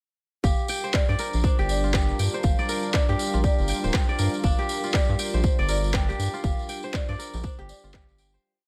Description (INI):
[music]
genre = afro house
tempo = 120 BPM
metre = 4/4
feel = swing 59% on 16ths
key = G minor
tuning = A4 = 441 Hz
[part]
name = marimba with medium mallets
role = melody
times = 0.4-8.3 s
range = C5 to G5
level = -37 LUFS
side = equal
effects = tape echo
[part]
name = dark analog pad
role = sustained chords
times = 0.7-8.4 s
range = G3 to Bb4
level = -36 LUFS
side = equal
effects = chorus, vintage 12-bit sampler grit, sidechain pumping
[part]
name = kora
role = arpeggios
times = 0.4-8.7 s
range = D4 to G5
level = -34 LUFS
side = equal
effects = sidechain pumping, tape echo
[part]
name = round analog bass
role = bass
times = 0.4-8.4 s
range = D1 to G2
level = -28 LUFS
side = equal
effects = sidechain pumping
[part]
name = electronic kick drum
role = drums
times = 0.4-8.1 s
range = none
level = -26 LUFS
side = equal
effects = none
[part]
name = tambourine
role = percussion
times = 0.4-8.4 s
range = none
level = -38 LUFS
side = equal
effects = none
[part]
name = electronic rim click and handclaps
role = drums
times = 0.9-8.1 s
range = none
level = -32 LUFS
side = equal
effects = none
[sound]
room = small room ambience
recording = none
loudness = -25 LUFS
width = mono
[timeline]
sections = 0.4-8.4 drop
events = drop 0.4-8.4; fade-out 5.8-8.4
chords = 0.4 Gm7